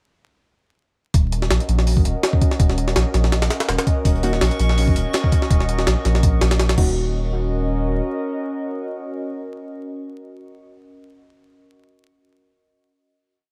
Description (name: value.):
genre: drum and bass, jungle.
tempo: 165 BPM.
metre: 4/4.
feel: swing 54% on 16ths.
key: Eb minor.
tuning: A4 = 439 Hz.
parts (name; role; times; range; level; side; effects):
warbly tape-like pad; sustained chords; 1.4-10.3 s; Db4 to Eb5; -29 LUFS; equal; chorus, built-in reverb.
soft dub sub bass; bass; 1.1-8.0 s; Eb1 to Bb1; -22 LUFS; equal; none.
jungle sampler-style drum kit; drums; 1.1-6.9 s; crash cymbal, hi-hat, kick drum, snare drum; -21 LUFS; equal; none.
crunchy breakbeat drum kit; drums; 4.1-5.4 s; hi-hat, snare drum; -37 LUFS; equal; none.
drifting glass-harmonics texture; texture; 4.3-5.5 s; Db6; -37 LUFS; equal; chorus, built-in reverb.
deep mellow chord stab; stabs; 4.2-4.4, 6.8-10.3 s; Bb3 to Gb4; -31 LUFS; equal; chorus, dub echo.
room: digital ambience.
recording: echo-heavy mix, vinyl crackle.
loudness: -20 LUFS.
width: mono.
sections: 1.1-7.0 drop; 7.0-9.9 final hit.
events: drop 1.1-7.0.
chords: 1.1 Ebm7.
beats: | 1.14 1.50 1.87 2.23 | 2.60 2.96 3.32 3.69 | 4.05 4.42 4.78 5.14 | 5.50 5.87 6.23 6.60 | 6.96 7.32 7.69 8.05 | 8.41 8.78 9.14 9.51.